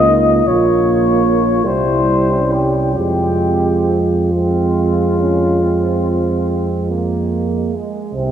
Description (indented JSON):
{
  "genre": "classical, hymn-like piece for brass band",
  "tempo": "43-53 BPM (dotted quarters)",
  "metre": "12/8",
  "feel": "rubato",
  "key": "F minor",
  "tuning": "A4 = 440 Hz",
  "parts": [
    { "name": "dark cornet", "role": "melody", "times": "0.0-8.3 s", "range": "Eb4 to Eb5", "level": "-19 LUFS", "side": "left 5 dB", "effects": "none" },
    { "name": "dark French horn section", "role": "second line", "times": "0.0-8.3 s", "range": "Ab3 to F4", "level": "-22 LUFS", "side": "right 7 dB", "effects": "none" },
    { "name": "mellow euphonium", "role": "accompaniment", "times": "0.0-7.5 s", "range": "Eb4 to F4", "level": "-20 LUFS", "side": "equal", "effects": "none" },
    { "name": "warm euphonium", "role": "accompaniment", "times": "0.0-8.3 s", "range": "C3 to Bb3", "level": "-20 LUFS", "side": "right 3 dB", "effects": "none" },
    { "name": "dark tuba", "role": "bass", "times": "0.0-8.3 s", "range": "Bb1 to F2", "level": "-19 LUFS", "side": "equal", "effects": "none" }
  ],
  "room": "wet church reverb, RT60 2.7 s",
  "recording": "none",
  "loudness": "-13 LUFS",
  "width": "side -9 dB against mid",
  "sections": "0.0-8.1 A section",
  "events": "none",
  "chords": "0.5 Bbm; 1.6 C; 3.0 Fm"
}